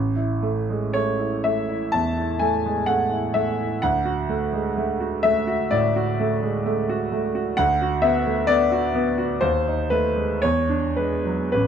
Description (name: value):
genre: classical, romantic character piece for solo piano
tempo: 52-67 BPM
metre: 4/4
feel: rubato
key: A major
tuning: A4 = 439 Hz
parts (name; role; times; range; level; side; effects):
- bright grand piano; solo; 0.0-11.7 s; A1 to A5; -20 LUFS; equal; none
room: light reverb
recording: dark, warm production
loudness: -20 LUFS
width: side -8 dB against mid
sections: 0.0-11.7 A section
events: none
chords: 0.0 A5; 3.8 D; 7.6 Bm/D; 9.4 B13b9/D#; 10.4 E7